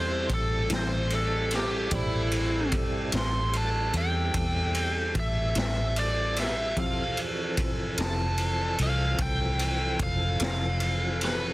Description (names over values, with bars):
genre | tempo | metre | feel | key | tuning
slow blues | 50 BPM (dotted quarters) | 12/8 | straight | A minor | A4 = 442 Hz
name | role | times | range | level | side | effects
biting lead guitar | melody | 0.0-11.5 s | E4 to C6 | -30 LUFS | equal | overdrive
warm grand piano | accompaniment | 0.0-11.5 s | C4 to E6 | -41 LUFS | right 5 dB | none
tonewheel organ | sustained chords | 0.0-11.5 s | E3 to A4 | -36 LUFS | equal | slow rotary speaker, chorus vibrato
warm saxophone section | sustained chords | 0.0-11.5 s | E3 to A4 | -39 LUFS | right 1 dB | none
vintage muted fingered electric bass | bass | 0.0-11.5 s | F1 to E2 | -29 LUFS | equal | none
raw garage drum kit | drums | 0.3-11.4 s | kick drum, ride cymbal, snare drum | -30 LUFS | equal | none
mellow electric guitar | accompaniment | 0.7-10.7 s | A2 to A4 | -35 LUFS | left 3 dB | harmonic tremolo
room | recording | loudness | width
little or no reverb | dense, heavily limited modern master | -25 LUFS | side -18 dB against mid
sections
0.0-11.5 A section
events
lead electric guitar solo 0.0-11.5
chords
0.0 Am7; 6.8 Fmaj7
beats
0.70 | 1.92 3.13 4.34 5.56 | 6.77 7.98 9.19 10.40